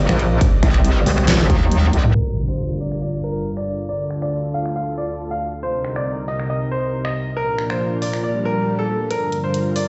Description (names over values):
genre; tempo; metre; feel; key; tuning
heavy wobble dubstep; 138 BPM; 4/4; swing 53% on 16ths, half-time; G minor; A4 = 436 Hz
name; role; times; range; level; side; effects
lush unison pad; sustained chords; 0.0-9.9 s; C2 to Eb5; -27 LUFS; equal; chorus, sidechain pumping
metallic wobble bass; bass; 0.0-2.1 s; C2 to Eb2; -19 LUFS; equal; chorus, overdrive
metallic wobble bass; bass; 0.1-1.5 s; Bb1 to C2; -18 LUFS; equal; chorus, overdrive
dubstep drum kit; drums; 0.1-9.8 s; finger snaps, handclaps, hi-hat, snare drum, toms; -25 LUFS; equal; overdrive, high-pass filter on hats, high-pass filter on snare, high-pass filter on toms, high-pass filter on room
electronic kick drum; drums; 0.4-1.6 s; none; -18 LUFS; equal; overdrive
bright grand piano; melody; 2.1-9.9 s; A4 to F5; -27 LUFS; equal; dub echo
impact, swell and riser; sound effects; 2.1-3.9, 8.4-9.9 s; none; -28 LUFS; equal; none
room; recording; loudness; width
light reverb, digital ambience; played on a big sound system in a bare room, stone room reverb, low-pass filter, nothing above 8.0 kHz; -20 LUFS; mono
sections
0.0-2.1 A section; 2.1-9.1 B section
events
drop 0.0-2.1; drum fill 1.7-2.1; impact 2.1-3.9; filter sweep 2.1-9.1; swell 8.4-9.1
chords
0.0 Cmadd9; 2.1 Gm7; 3.9 Dm; 5.6 Cm7; 7.4 Bb; 9.1 Gm7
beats
| 0.41 0.84 1.28 1.72 | 2.15 2.58 3.02 3.45 | 3.89 4.32 4.76 5.19 | 5.63 6.06 6.50 6.93 | 7.37 7.80 8.24 8.67 | 9.11 9.54